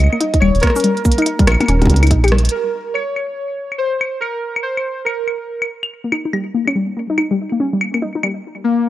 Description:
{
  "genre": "IDM",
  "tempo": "142 BPM",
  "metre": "4/4",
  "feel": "swing 62% on 16ths",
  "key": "unclear",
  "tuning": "A4 = 442 Hz",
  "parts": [
    { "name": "warbly lo-fi synth keys", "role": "melody", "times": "0.0-5.7, 8.6-8.9 s", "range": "Bb3 to Eb5", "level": "-20 LUFS", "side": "equal", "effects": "chorus, phaser, analog delay" },
    { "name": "round analog bass", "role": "bass", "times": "0.0-2.5 s", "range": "Eb1 to Db2", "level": "-13 LUFS", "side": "equal", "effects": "tube saturation" },
    { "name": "glitchy drum kit", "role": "drums", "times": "0.0-8.3 s", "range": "cabasa, claves, hi-hat, percussion blips, rim click", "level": "-20 LUFS", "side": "left 2 dB", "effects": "low-pass filter on hats, low-pass filter on perc, low-pass filter on snare, low-pass filter on room" },
    { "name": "warbly dusty pluck", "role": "arpeggios", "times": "0.1-2.4, 6.0-8.3 s", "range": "G3 to G4", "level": "-18 LUFS", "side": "left 2 dB", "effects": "chorus, analog delay" },
    { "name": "electronic kick drum", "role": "drums", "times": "0.3-2.2 s", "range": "none", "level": "-15 LUFS", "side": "equal", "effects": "none" }
  ],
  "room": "light reverb, digital ambience",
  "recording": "dry, gritty hardware recording",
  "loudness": "-15 LUFS",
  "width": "side -14 dB against mid",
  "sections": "0.0-2.5 A section; 2.5-8.9 B section",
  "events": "drum fill 2.3; band accent 2.3",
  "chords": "0.0 Eb7; 2.5 N.C.; 5.9 Eb"
}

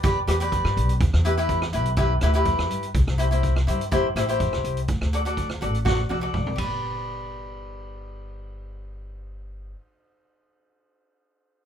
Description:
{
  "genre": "calypso",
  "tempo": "124 BPM",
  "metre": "4/4",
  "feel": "straight",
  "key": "G major",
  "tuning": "A4 = 441 Hz",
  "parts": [
    { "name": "cavaquinho", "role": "accompaniment", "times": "0.0-9.8 s", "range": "E4 to D5", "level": "-26 LUFS", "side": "left 1 dB", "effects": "none" },
    { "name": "upright bass", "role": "bass", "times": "0.0-9.7 s", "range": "G1 to G2", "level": "-25 LUFS", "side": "equal", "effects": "none" },
    { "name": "street-band drum kit", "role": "drums", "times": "0.0-6.7 s", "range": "hi-hat, kick drum, ride cymbal, rim click, snare drum, toms", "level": "-28 LUFS", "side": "right 1 dB", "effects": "none" }
  ],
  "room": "light reverb",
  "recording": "minimal, uncompressed stereo recording",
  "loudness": "-21 LUFS",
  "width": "side -9 dB against mid",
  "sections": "0.0-6.8 A section; 6.8-10.7 B section",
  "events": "drum fill 5.9-6.8",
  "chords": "0.0 Em7; 2.9 C6; 4.9 D; 6.6 G"
}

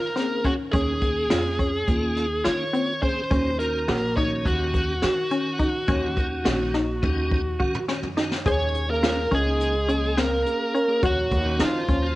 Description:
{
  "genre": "progressive instrumental, band music in an uneven meter",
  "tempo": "210 BPM (eighths)",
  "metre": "9/8",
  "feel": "straight",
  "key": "Eb dorian",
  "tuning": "A4 = 440 Hz",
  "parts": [
    { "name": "bluesy overdriven lead guitar", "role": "melody", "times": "0.0-12.2 s", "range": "F4 to Db5", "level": "-26 LUFS", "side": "equal", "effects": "distortion, cassette tape" },
    { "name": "resonant blip pluck", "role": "arpeggios", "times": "0.0-12.2 s", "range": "C4 to Ab4", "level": "-27 LUFS", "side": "left 1 dB", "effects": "chorus, cassette tape" },
    { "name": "upright bass", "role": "bass", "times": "0.0-12.2 s", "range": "Bb1 to Eb3", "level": "-28 LUFS", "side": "equal", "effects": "none" },
    { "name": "tonewheel organ", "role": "accompaniment", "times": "0.2-12.2 s", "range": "Eb3 to Ab4", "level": "-32 LUFS", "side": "equal", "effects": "overdrive, chorus vibrato, slow rotary speaker, cassette tape" },
    { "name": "jazz brush drum kit", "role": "drums", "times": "0.2-12.0 s", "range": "hi-hat, kick drum, snare drum, toms", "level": "-26 LUFS", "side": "equal", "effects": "cassette tape" },
    { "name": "trombone with cup mute", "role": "second line", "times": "8.5-12.1 s", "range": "F3 to Db4", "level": "-29 LUFS", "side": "right 2 dB", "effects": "cassette tape" }
  ],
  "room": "light reverb, small room ambience",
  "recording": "home recording on cassette",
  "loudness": "-21 LUFS",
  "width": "side -17 dB against mid",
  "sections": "0.0-8.5 A section; 8.5-12.2 B section",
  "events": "drum fill 6.7-8.5",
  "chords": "0.0 Bbm7/Eb; 3.3 Ebm7; 8.5 Bbm7; 11.0 Ebm7"
}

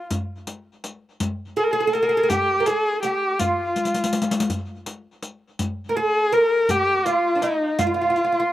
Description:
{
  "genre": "Persian modal ensemble",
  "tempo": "55 BPM (dotted quarters)",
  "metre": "6/8",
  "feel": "straight",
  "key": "unclear",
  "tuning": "A4 = 439 Hz",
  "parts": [
    { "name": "warm kamancheh", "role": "melody", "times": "0.0-8.5 s", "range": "Eb4 to Bb4", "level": "-21 LUFS", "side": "left 2 dB", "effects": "none" },
    { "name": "oud", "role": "second line", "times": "0.0-8.5 s", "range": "D4 to Bb4", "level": "-23 LUFS", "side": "right 4 dB", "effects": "none" },
    { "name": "riq", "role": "percussion", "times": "0.1-8.3 s", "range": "none", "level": "-27 LUFS", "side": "left 3 dB", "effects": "none" },
    { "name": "tombak", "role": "percussion", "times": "0.1-8.2 s", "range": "none", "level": "-31 LUFS", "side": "equal", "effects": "none" }
  ],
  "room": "little or no reverb",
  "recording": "recorded outdoors, with no room sound",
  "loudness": "-19 LUFS",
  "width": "side -14 dB against mid",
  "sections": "0.0-8.5 A section",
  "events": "drum fill 3.8-4.5",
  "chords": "none"
}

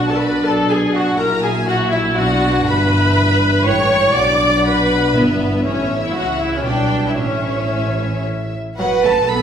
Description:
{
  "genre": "quick classical-period movement for symphony orchestra",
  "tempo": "120 BPM",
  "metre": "3/4",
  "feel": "rubato",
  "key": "unclear",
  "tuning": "A4 = 439 Hz",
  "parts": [
    { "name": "warm chamber violin section", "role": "melody", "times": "0.0-9.4 s", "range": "D5 to B5", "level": "-26 LUFS", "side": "left 3 dB", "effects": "none" },
    { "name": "warm symphonic violin section", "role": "second line", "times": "0.0-9.4 s", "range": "F#4 to D6", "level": "-23 LUFS", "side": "left 2 dB", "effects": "none" },
    { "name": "rich chamber viola section", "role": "accompaniment", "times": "0.0-9.4 s", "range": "F#3 to D5", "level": "-18 LUFS", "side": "equal", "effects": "none" },
    { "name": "mellow French horn section", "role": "sustained chords", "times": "0.0-8.5 s", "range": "E3 to E4", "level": "-21 LUFS", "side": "equal", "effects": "none" },
    { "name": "dark chamber cello section", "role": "bass", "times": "0.0-9.4 s", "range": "G2 to B4", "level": "-22 LUFS", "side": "right 3 dB", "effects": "none" },
    { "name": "warm chamber double bass section", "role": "bass", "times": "0.0-9.4 s", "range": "F#1 to C#2", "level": "-23 LUFS", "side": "right 2 dB", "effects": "none" }
  ],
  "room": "wet recital hall reverb, RT60 1.8 s",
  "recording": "recorded in a church or concert hall",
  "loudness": "-14 LUFS",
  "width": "side -8 dB against mid",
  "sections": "0.0-8.8 A section",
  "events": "none",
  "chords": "0.0 Bm; 1.2 F#7/A#; 2.2 Bm; 2.7 Em7/G; 3.7 A7; 4.2 Bm; 5.2 Em7/G; 5.7 A; 6.7 G/B; 7.2 A; 8.8 F#madd11"
}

